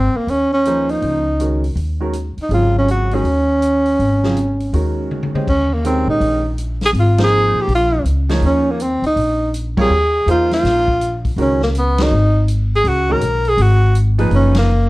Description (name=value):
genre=modal jazz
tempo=163 BPM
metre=4/4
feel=swing 64% on 8ths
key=unclear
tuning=A4 = 437 Hz
part: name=breathy tenor saxophone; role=melody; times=0.0-14.9 s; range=Bb3 to Bb4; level=-16 LUFS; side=equal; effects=none
part: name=upright bass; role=bass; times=0.0-14.9 s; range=Gb1 to Bb2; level=-17 LUFS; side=equal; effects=none
part: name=vintage drum kit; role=drums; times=0.3-14.6 s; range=crash cymbal, hi-hat, kick drum, ride cymbal, snare drum, toms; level=-25 LUFS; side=left 1 dB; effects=none
part: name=clear concert grand piano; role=accompaniment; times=0.7-14.7 s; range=Bb2 to Eb5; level=-22 LUFS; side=right 2 dB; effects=none
room=light reverb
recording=dark, warm production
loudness=-14 LUFS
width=side -19 dB against mid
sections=0.0-5.5 A section; 5.5-14.9 B section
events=drum fill 5.1-5.5; band accent 7.1, 9.7, 11.9, 14.5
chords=0.0 Ab13sus4; 5.5 Eb9sus4; 11.4 Db9sus4